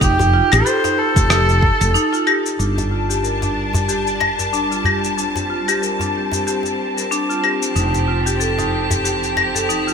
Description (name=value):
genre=organic downtempo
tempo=93 BPM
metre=4/4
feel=swing 57% on 16ths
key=unclear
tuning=A4 = 440 Hz
part: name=clear kamancheh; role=melody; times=0.0-2.3 s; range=G4 to C5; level=-19 LUFS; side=right 2 dB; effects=ping-pong delay, shimmer reverb
part: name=marimba with hard mallets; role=arpeggios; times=0.0-9.9 s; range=D4 to Bb4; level=-21 LUFS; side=equal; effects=low-pass filter, ping-pong delay, shimmer reverb
part: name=woody fretless electric bass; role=bass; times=0.0-9.9 s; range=F1 to A1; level=-20 LUFS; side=equal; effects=sidechain pumping
part: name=electronic kick drum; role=drums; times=0.0-1.8 s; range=none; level=-18 LUFS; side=equal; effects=none
part: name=electronic shaker, claves and rim click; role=drums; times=0.0-9.9 s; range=none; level=-22 LUFS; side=left 4 dB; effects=overdrive
part: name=djembe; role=percussion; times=0.2-9.7 s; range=none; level=-26 LUFS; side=equal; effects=none
part: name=rich symphonic string section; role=sustained chords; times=2.6-9.9 s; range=F3 to A5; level=-23 LUFS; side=left 1 dB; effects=sidechain pumping, shimmer reverb
part: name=drifting glass-harmonics texture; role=texture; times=3.6-9.9 s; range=A5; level=-27 LUFS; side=right 4 dB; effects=chorus, built-in reverb, shimmer reverb
room=moderate lush hall reverb, RT60 2.5 s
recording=bright 1980s-style digital production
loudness=-15 LUFS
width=side -6 dB against mid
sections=0.0-2.6 A section; 2.6-9.9 B section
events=break 1.9-2.6; filter sweep on marimba 2.6-9.9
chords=0.0 F9; 2.6 G5; 7.8 F9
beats=| 0.01 0.66 1.30 1.95 | 2.59 3.24 3.88 4.53 | 5.17 5.82 6.46 7.11 | 7.75 8.40 9.05 9.69